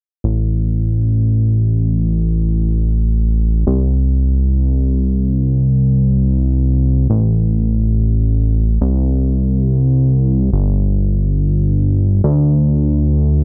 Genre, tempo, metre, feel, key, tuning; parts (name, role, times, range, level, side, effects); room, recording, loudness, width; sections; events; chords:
trance; free time; A minor; A4 = 440 Hz
fat analog bass; bass; 0.2-13.4 s; G1 to D2; -15 LUFS; equal
little or no reverb; -15 LUFS; mono
0.2-13.4 A section